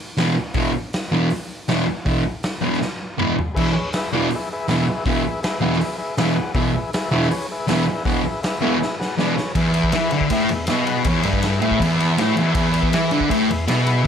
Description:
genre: garage rock duo or trio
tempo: 160 BPM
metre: 4/4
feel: straight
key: E mixolydian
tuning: A4 = 440 Hz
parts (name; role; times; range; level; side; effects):
- fuzz guitar; riff; 0.2-14.1 s; E2 to E3; -18 LUFS; equal; distortion
- raw garage drum kit; drums; 0.2-14.0 s; crash cymbal, hi-hat, kick drum, ride cymbal, snare drum, toms; -25 LUFS; equal; none
- combo organ; sustained chords; 3.5-14.1 s; G#4 to F#5; -27 LUFS; left 2 dB; none
room: moderate studio reverb, RT60 0.6 s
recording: none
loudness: -18 LUFS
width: side -8 dB against mid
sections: 0.0-9.6 A section; 9.6-14.1 B section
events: drum fill 2.8-3.6, 8.8-9.6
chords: 0.0 E

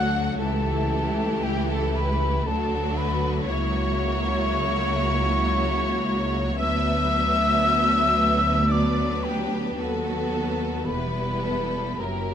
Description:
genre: classical, slow romantic movement for symphony orchestra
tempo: 57 BPM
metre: 3/4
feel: uneven beats, rubato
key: B minor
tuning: A4 = 440 Hz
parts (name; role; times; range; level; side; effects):
- warm symphonic violin section; melody; 0.0-12.3 s; G4 to F#5; -29 LUFS; left 1 dB; none
- concert flute; second line; 0.0-12.3 s; G5 to F#6; -27 LUFS; left 2 dB; none
- rich symphonic violin section; second line; 0.0-12.3 s; D4 to B4; -32 LUFS; left 3 dB; none
- rich symphonic viola section; accompaniment; 0.0-12.3 s; E3 to B3; -29 LUFS; right 2 dB; none
- rich studio double bass section; bass; 0.0-12.3 s; E1 to D#2; -29 LUFS; right 1 dB; none
- rich symphonic cello section; bass; 0.0-12.3 s; C#2 to F#2; -29 LUFS; equal; none
room: moderate scoring stage reverb, RT60 1.7 s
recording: vinyl crackle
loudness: -21 LUFS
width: side -9 dB against mid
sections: 0.0-12.3 A section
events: none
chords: 0.4 A7/C#; 2.5 D; 3.5 F#7/C#; 6.6 Bm/D; 9.8 B7/D#; 10.9 Em

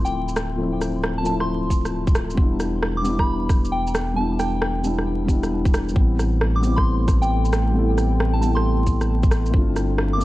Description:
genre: future garage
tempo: 134 BPM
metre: 4/4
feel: swing 65% on 16ths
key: D dorian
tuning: A4 = 441 Hz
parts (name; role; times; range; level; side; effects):
- soft synth bell; melody; 0.0-10.2 s; G5 to D6; -28 LUFS; equal; chorus, tape echo
- felt-muted upright piano; accompaniment; 0.0-10.2 s; F3 to F4; -25 LUFS; left 2 dB; sidechain pumping, tape echo
- soft dub sub bass; bass; 0.0-10.2 s; D1 to A1; -23 LUFS; equal; sidechain pumping
- electronic shaker and rim click; drums; 0.1-10.2 s; none; -28 LUFS; right 1 dB; none
- electronic kick drum; drums; 1.7-9.7 s; none; -19 LUFS; equal; none
- warbly tape-like pad; sustained chords; 6.5-10.2 s; G3 to G5; -29 LUFS; right 1 dB; chorus, built-in reverb, sidechain pumping
room: light reverb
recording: vinyl crackle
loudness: -18 LUFS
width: side -17 dB against mid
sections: 0.0-10.2 A section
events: none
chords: 0.0 Dm7; 2.4 Em7; 6.0 Am7; 9.5 G9sus4

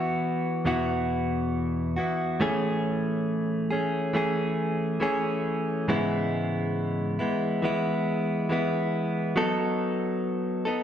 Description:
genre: pop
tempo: 69 BPM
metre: 4/4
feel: straight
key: A major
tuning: A4 = 440 Hz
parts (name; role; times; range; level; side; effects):
- direct-recorded clean electric guitar; solo; 0.0-10.8 s; E2 to A4; -25 LUFS; equal; spring reverb
room: wet large studio reverb, RT60 0.9 s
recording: band playing live in one room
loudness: -25 LUFS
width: side -9 dB against mid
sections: 0.0-2.4 A section; 2.4-10.8 B section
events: none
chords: 0.0 Esus2; 2.4 Amaj7; 5.9 E6/G#; 9.4 B7/F#

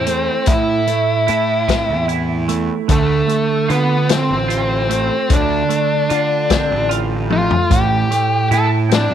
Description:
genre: psychedelic rock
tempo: 50 BPM (dotted quarters)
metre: 6/8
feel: straight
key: A minor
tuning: A4 = 440 Hz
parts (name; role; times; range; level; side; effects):
- octave-fuzz lead guitar; melody; 0.0-9.1 s; A3 to A4; -18 LUFS; left 1 dB; distortion, slapback echo
- semi-hollow electric guitar; riff; 0.0-9.1 s; A2 to F4; -20 LUFS; right 9 dB; rotary speaker
- fuzz picked electric bass; bass; 0.0-9.1 s; A1 to D3; -21 LUFS; left 1 dB; overdrive
- vintage drum kit; drums; 0.1-9.1 s; hi-hat, kick drum, snare drum, toms; -18 LUFS; left 3 dB; none
room: light reverb, small room ambience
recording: 1960s-style stereo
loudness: -14 LUFS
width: side -9 dB against mid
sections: 0.0-9.1 A section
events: drum fill 7.3-7.7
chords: 0.0 Am; 2.9 Dm7; 7.7 Am

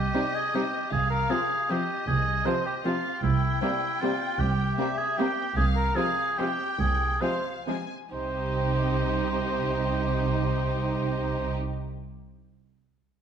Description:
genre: classical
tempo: 127-166 BPM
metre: 3/4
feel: rubato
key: C minor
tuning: A4 = 440 Hz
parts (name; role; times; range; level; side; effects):
- dark studio violin section; melody; 0.0-11.5 s; Eb5 to Ab5; -37 LUFS; left 6 dB; none
- mellow oboe; second line; 0.0-11.5 s; E4 to C5; -29 LUFS; right 1 dB; none
- dark studio cello section; bass; 0.0-11.5 s; C2 to C3; -32 LUFS; right 2 dB; none
- warm studio double bass section; bass; 0.0-11.5 s; C2; -29 LUFS; right 2 dB; none
- rich studio violin section; second line; 0.1-11.5 s; Ab3 to G4; -35 LUFS; left 4 dB; none
- rich studio viola section; accompaniment; 0.1-11.5 s; C3 to Eb4; -32 LUFS; right 1 dB; none
room: wet recital hall reverb, RT60 1.2 s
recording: dark, warm production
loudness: -24 LUFS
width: side -8 dB against mid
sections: 0.0-8.1 A section; 8.1-10.8 B section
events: slowing down 5.0-8.1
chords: 0.0 Cm; 0.9 Fm/C; 3.2 C; 5.6 Fm/C; 8.1 Cm

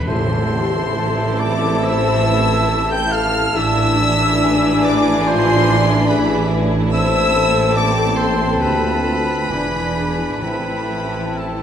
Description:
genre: classical, slow romantic movement for symphony orchestra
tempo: 70 BPM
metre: 4/4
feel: uneven beats, rubato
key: A minor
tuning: A4 = 441 Hz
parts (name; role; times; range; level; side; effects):
- warm studio violin section; melody; 0.0-11.6 s; A5 to G6; -23 LUFS; left 2 dB; none
- warm oboe; second line; 0.0-11.6 s; A4 to G5; -24 LUFS; right 2 dB; none
- timpani; percussion; 0.0-1.4, 10.4-11.6 s; A2; -28 LUFS; equal; none
- silver concert flute; second line; 0.1-11.6 s; G#5 to A5; -25 LUFS; left 2 dB; none
- warm studio violin section; second line; 0.1-11.6 s; E4 to A4; -27 LUFS; left 2 dB; none
- rich studio viola section; accompaniment; 0.1-11.6 s; E3 to D4; -25 LUFS; equal; none
- warm bassoon; accompaniment; 0.1-11.6 s; C4 to E4; -26 LUFS; equal; none
- clear trombone section; sustained chords; 0.1-11.6 s; E3 to E4; -28 LUFS; right 2 dB; none
- dark French horn section; sustained chords; 0.1-11.6 s; D4 to C5; -22 LUFS; left 5 dB; none
- mellow tuba; bass; 0.1-11.6 s; E1 to D2; -26 LUFS; right 3 dB; none
- rich studio cello section; bass; 0.1-11.6 s; D2 to A2; -26 LUFS; right 3 dB; none
- warm studio double bass section; bass; 0.1-11.6 s; E1 to D2; -24 LUFS; right 3 dB; none
- tam-tam; percussion; 0.1-3.5 s; none; -30 LUFS; left 2 dB; none
room: wet recital hall reverb, RT60 1.4 s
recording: none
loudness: -14 LUFS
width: side -9 dB against mid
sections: 0.1-11.6 A section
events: band accent 0.1-1.0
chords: 0.1 Am; 3.6 E7/A; 6.9 Am; 8.6 Dm7; 9.5 E7; 10.4 Am

